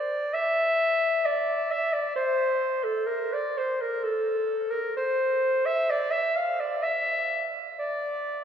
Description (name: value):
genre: classical, free, expressive piece for unaccompanied clarinet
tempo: 64 BPM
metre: 3/4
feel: rubato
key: unclear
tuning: A4 = 439 Hz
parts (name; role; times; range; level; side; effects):
- warm clarinet; solo; 0.0-8.4 s; A4 to F5; -24 LUFS; equal; none
room: wet cathedral reverb, RT60 4.9 s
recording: heard from further back in the room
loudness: -24 LUFS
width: side -8 dB against mid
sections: 0.0-8.4 A section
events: none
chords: none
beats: 0.32 1.25 | 2.15 3.07 4.02 | 4.94 5.88 6.84 | 7.80